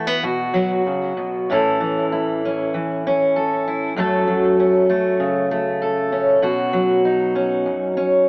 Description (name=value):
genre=folk, solo fingerstyle acoustic guitar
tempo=98 BPM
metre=4/4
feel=rubato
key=unclear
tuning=A4 = 440 Hz
part: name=fingerpicked steel-string acoustic guitar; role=solo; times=0.0-8.3 s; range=F#2 to A4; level=-19 LUFS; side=equal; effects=tape echo
room=light reverb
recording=AM radio sound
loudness=-20 LUFS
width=mono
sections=0.0-8.3 A section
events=none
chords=0.2 Bsus2; 1.5 A; 4.0 F#m; 6.4 Badd9